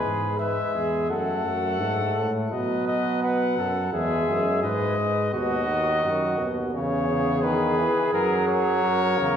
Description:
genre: classical, imitative canzona for brass ensemble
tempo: 85 BPM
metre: 4/4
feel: straight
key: E major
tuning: A4 = 441 Hz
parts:
  - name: warm cornet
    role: melody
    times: 0.0-9.4 s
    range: A#4 to F#5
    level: -27 LUFS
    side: left 4 dB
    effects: none
  - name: mellow trumpet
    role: second line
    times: 0.0-9.4 s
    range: F#4 to B4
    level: -28 LUFS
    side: right 2 dB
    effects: none
  - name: clear trombone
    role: accompaniment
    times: 0.0-9.4 s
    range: B2 to A3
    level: -28 LUFS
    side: right 2 dB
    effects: none
  - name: mellow bass trombone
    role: bass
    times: 0.0-9.4 s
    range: D#2 to B2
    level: -28 LUFS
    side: right 1 dB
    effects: none
room: wet recital hall reverb, RT60 1.7 s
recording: recorded in a church or concert hall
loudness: -22 LUFS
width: side -8 dB against mid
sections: 0.0-9.4 A section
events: none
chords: 0.0 E; 1.1 F#m; 2.5 B; 3.9 E; 5.3 B/D#; 6.7 C#m/E; 8.1 F#

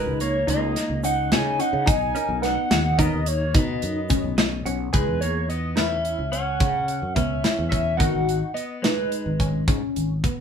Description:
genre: progressive instrumental, band music in an uneven meter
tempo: 215 BPM (eighths)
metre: 11/8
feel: straight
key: C# dorian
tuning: A4 = 440 Hz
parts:
  - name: hollow square lead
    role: melody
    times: 0.0-9.6 s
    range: B4 to G#5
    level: -26 LUFS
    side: right 2 dB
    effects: chorus
  - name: clean electric guitar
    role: second line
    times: 0.0-9.6 s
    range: G#3 to D#4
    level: -32 LUFS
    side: left 3 dB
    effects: none
  - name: hollow-body jazz guitar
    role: accompaniment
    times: 0.0-8.2 s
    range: B3 to F#5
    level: -33 LUFS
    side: right 4 dB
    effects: none
  - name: tight sequenced synth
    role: arpeggios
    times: 0.0-10.4 s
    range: B3 to G#4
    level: -29 LUFS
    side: left 2 dB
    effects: chorus, phaser
  - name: sustaining fretless electric bass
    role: bass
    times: 0.1-10.2 s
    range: G#1 to C#3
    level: -27 LUFS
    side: equal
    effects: none
  - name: tight metal drum kit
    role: drums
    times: 0.2-10.4 s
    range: hi-hat, kick drum, snare drum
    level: -24 LUFS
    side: equal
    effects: none
  - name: egg shaker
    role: percussion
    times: 1.0-4.5 s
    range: none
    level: -40 LUFS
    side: right 4 dB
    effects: none
room: wet studio reverb, RT60 0.5 s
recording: band playing live in one room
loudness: -20 LUFS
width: side -7 dB against mid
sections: 0.0-4.9 A section; 4.9-10.4 B section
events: hollow-body jazz guitar fill 4.1-4.9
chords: 0.0 D#m; 1.9 Bmaj7; 4.9 C#m7; 8.0 G#m7

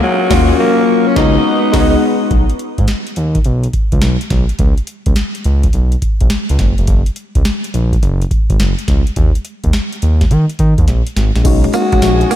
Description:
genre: R&B, new jack swing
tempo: 105 BPM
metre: 4/4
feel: swing 66% on 16ths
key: unclear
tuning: A4 = 440 Hz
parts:
  - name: raspy alto saxophone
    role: melody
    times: 0.0-2.0, 11.7-12.4 s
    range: Gb3 to F#4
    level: -16 LUFS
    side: equal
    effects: ping-pong delay
  - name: tine electric piano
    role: accompaniment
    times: 0.0-2.3, 11.4-12.4 s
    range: Gb3 to Gb4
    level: -15 LUFS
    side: left 4 dB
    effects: phaser
  - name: chorused pulse-width pad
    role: sustained chords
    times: 0.0-2.3, 11.5-12.4 s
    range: Gb4 to Eb6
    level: -24 LUFS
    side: right 2 dB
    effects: none
  - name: rich studio string section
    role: stabs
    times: 0.3-1.9 s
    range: Cb4 to Gb4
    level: -24 LUFS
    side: right 2 dB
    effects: ping-pong delay
  - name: smooth gliding synth bass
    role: bass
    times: 0.3-12.2 s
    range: F1 to Eb3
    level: -14 LUFS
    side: equal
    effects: none
  - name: booming analog drum machine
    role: drums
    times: 0.3-12.4 s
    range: crash cymbal, hi-hat, kick drum, snare drum, tambourine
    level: -15 LUFS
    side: equal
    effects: none
  - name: direct-recorded clean electric guitar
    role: riff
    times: 11.6-12.4 s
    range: G#3 to Bb3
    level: -23 LUFS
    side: right 6 dB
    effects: wide subtle chorus
room: light reverb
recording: none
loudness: -11 LUFS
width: side -12 dB against mid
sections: 0.0-2.3 A section; 2.3-11.5 B section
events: band accent 0.0-2.3; drum fill 10.9-11.5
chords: 0.0 Ebm9; 1.2 Db9sus4; 2.3 B; 4.6 N.C.; 6.6 Gb; 9.2 Eb5; 11.5 B69

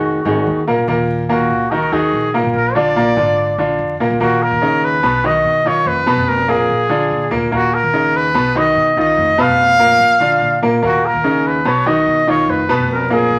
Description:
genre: latin, Cuban son and guajira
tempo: 145 BPM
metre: 4/4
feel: straight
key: Eb minor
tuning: A4 = 443 Hz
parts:
  - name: breathy trumpet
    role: melody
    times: 0.0-13.4 s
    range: Gb4 to E#5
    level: -17 LUFS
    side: equal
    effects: none
  - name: bright grand piano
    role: arpeggios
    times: 0.0-13.4 s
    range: Bb2 to B4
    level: -18 LUFS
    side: equal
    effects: none
  - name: upright bass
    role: bass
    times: 0.0-13.4 s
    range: F1 to B2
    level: -28 LUFS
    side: equal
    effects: none
room: wet studio reverb, RT60 0.5 s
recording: vinyl crackle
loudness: -15 LUFS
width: mono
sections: 0.0-4.2 A section; 4.2-13.4 B section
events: none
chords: 0.0 Absus2; 0.9 Ebm; 2.5 Bb; 4.2 Eb5; 5.0 B; 5.9 Abm69/F; 6.7 Bb7; 7.5 Eb5; 8.3 B; 9.2 Bmaj7#11/E#; 10.0 Bb; 10.8 Eb5; 11.7 B; 12.5 Abm69/F

